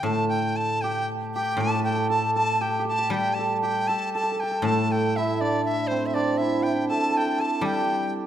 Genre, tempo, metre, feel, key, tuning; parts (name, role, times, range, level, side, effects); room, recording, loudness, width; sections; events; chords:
chinese traditional, Chinese chamber ensemble; 79 BPM; 4/4; rubato; A4 = 440 Hz
dizi; melody; 0.0-8.1 s; C5 to A5; -27 LUFS; left 1 dB
hammered dulcimer; second line; 0.0-8.3 s; C4 to A4; -25 LUFS; right 3 dB
guzheng; accompaniment; 0.0-8.3 s; A2 to G3; -28 LUFS; left 2 dB
wet recital hall reverb, RT60 1.6 s; -22 LUFS; side -10 dB against mid
0.0-8.3 A section